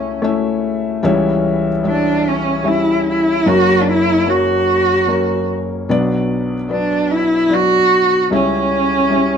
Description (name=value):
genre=acoustic folk-pop ballad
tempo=75 BPM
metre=3/4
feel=straight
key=B minor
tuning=A4 = 440 Hz
part: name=warm cello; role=melody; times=0.0-9.4 s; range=C#4 to F#4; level=-14 LUFS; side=right 1 dB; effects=none
part: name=felt-muted upright piano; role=accompaniment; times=0.0-9.4 s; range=F#1 to E5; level=-17 LUFS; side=left 2 dB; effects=none
room=moderate studio reverb, RT60 0.9 s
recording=dark, warm production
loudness=-13 LUFS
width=side -7 dB against mid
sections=0.0-9.4 A section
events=none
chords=0.0 A/C#; 1.1 C#dim; 3.5 F#; 5.9 Bm; 8.3 C#dim